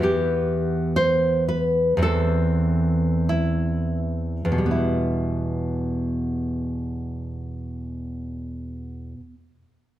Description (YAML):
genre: romantic piece for solo classical guitar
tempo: 39-67 BPM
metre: 2/4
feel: rubato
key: E minor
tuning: A4 = 440 Hz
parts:
  - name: nylon-string guitar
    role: solo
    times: 0.0-9.4 s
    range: E2 to C5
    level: -21 LUFS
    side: equal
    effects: none
room: moderate recital hall reverb, RT60 1.4 s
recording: none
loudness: -21 LUFS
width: side -13 dB against mid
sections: 0.0-4.7 A section; 4.7-10.0 B section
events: slowing down 0.0-4.7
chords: 0.0 Em; 2.0 Am/E; 4.7 Em